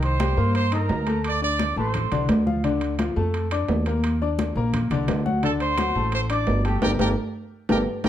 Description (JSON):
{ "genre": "latin, salsa", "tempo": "172 BPM", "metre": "4/4", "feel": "straight", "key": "unclear", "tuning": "A4 = 440 Hz", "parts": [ { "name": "mellow trumpet section", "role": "melody", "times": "0.0-2.3, 5.4-8.1 s", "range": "G4 to D6", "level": "-26 LUFS", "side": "right 2 dB", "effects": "none" }, { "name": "clear baby grand piano", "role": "accompaniment", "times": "0.0-8.1 s", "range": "D3 to Eb6", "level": "-26 LUFS", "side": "left 4 dB", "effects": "none" }, { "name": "upright bass", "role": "bass", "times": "0.0-8.1 s", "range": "G1 to G2", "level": "-25 LUFS", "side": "equal", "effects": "none" }, { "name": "congas", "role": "percussion", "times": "0.0-8.1 s", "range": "none", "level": "-28 LUFS", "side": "left 2 dB", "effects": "none" }, { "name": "timbales", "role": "percussion", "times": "0.0-8.1 s", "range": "none", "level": "-29 LUFS", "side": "right 4 dB", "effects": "none" } ], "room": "moderate large studio reverb, RT60 0.9 s", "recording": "dark, warm production", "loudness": "-20 LUFS", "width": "side -11 dB against mid", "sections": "0.0-8.1 A section", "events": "drum fill 6.8-8.1; band accent 6.8-8.1", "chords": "0.0 Cm7; 1.2 D5; 2.6 Dm; 4.0 Eb5; 5.4 D7; 6.8 Gmadd9", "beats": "0.20 0.55 0.90 | 1.25 1.60 1.95 2.29 | 2.64 2.99 3.34 3.69 | 4.04 4.38 4.73 5.08 | 5.43 5.78 6.13 6.48 | 6.83 7.17 7.52 7.87" }